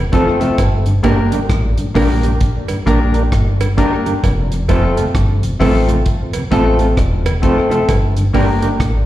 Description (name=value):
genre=roots reggae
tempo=66 BPM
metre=4/4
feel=swing 61% on 16ths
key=F major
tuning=A4 = 435 Hz
part: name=mellow tonewheel organ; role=accompaniment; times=0.0-8.7 s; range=F2 to D4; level=-23 LUFS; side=left 1 dB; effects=overdrive, chorus vibrato, slow rotary speaker, tape echo, slapback echo
part: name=deep dub fingered electric bass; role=bass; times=0.0-9.1 s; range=E1 to Bb1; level=-15 LUFS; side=equal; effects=none
part: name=mellow electric guitar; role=accompaniment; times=0.1-8.7 s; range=A3 to Bb4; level=-20 LUFS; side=right 4 dB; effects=harmonic tremolo, tape echo, plate reverb, slapback echo
part: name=warm grand piano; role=stabs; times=0.1-8.6 s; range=A3 to Bb4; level=-19 LUFS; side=left 4 dB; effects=plate reverb, slapback echo
part: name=deep reggae drum kit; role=drums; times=0.1-9.1 s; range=hi-hat, kick drum, rim click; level=-19 LUFS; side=equal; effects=none
part: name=cowbell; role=percussion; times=0.6-8.6 s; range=none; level=-26 LUFS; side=right 6 dB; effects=slapback echo
room=light reverb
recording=live gig heard through the venue's PA, recital hall reverb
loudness=-12 LUFS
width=side -14 dB against mid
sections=0.0-9.1 A section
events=none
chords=0.0 F; 0.6 Gm; 4.2 F; 7.9 Gm